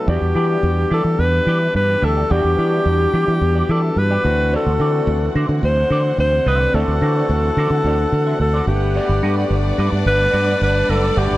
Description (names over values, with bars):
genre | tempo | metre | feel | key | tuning
disco | 108 BPM | 4/4 | straight | E minor | A4 = 443 Hz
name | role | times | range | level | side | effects
breathy alto saxophone | melody | 0.0-11.4 s | G4 to C5 | -19 LUFS | left 1 dB | none
barky tine electric piano | accompaniment | 0.0-11.4 s | E3 to A4 | -26 LUFS | left 2 dB | overdrive, phaser
rich symphonic string section | sustained chords | 0.0-11.4 s | D3 to F#5 | -29 LUFS | right 3 dB | none
semi-hollow electric guitar | accompaniment | 0.1-11.4 s | E4 to E5 | -28 LUFS | right 2 dB | wah
fingered electric bass | bass | 0.1-11.4 s | F#1 to E3 | -18 LUFS | equal | none
warm studio violin section | second line | 8.9-11.4 s | D4 to D5 | -25 LUFS | left 3 dB | none
room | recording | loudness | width
light reverb, studio ambience | dark, warm production | -15 LUFS | side -16 dB against mid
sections
0.1-11.4 A section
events
none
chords
0.1 Em7; 4.2 D7; 8.7 Gmaj7